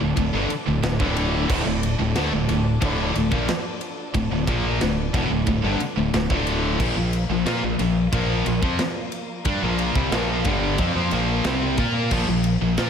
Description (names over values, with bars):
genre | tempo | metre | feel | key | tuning
heavy metal | 90 BPM | 4/4 | straight | D minor | A4 = 440 Hz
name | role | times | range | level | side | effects
warm chamber string section | sustained chords | 0.0-12.9 s | F3 to F5 | -35 LUFS | equal | none
distorted electric guitar | riff | 0.0-12.9 s | D2 to Bb4 | -28 LUFS | equal | overdrive
high-gain distorted guitar | riff | 0.0-12.9 s | D2 to Bb4 | -26 LUFS | left 9 dB | distortion
scooped high-gain guitar | riff | 0.0-12.9 s | D2 to Bb4 | -26 LUFS | right 8 dB | distortion, slapback echo
growling fingered electric bass | bass | 0.0-12.9 s | D1 to Bb2 | -26 LUFS | equal | overdrive
tight metal drum kit | drums | 0.2-12.9 s | crash cymbal, kick drum, ride cymbal, snare drum | -27 LUFS | equal | none
room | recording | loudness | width
moderate lush hall reverb, RT60 1.7 s, small room ambience | big arena sound | -20 LUFS | side -7 dB against mid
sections
0.0-12.9 A section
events
none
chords
0.0 Dm; 6.8 Bb5